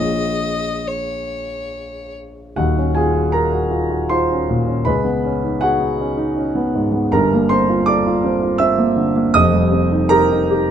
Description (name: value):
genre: classical, impressionist duo for violin and grand piano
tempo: 80 BPM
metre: 3/4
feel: uneven beats, rubato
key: unclear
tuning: A4 = 440 Hz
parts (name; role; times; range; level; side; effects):
- warm violin; melody; 0.0-2.2 s; Db5 to Eb5; -24 LUFS; left 3 dB; none
- dark grand piano; accompaniment; 0.0-10.7 s; Eb1 to Fb6; -15 LUFS; right 1 dB; none
room: light reverb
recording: close, detailed microphones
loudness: -15 LUFS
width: side -9 dB against mid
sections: 0.0-2.6 A section; 2.6-10.7 B section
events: none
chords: 0.0 Bbm7; 2.6 Ebm11; 4.9 Db9sus4; 7.1 Gm11; 9.3 F9sus4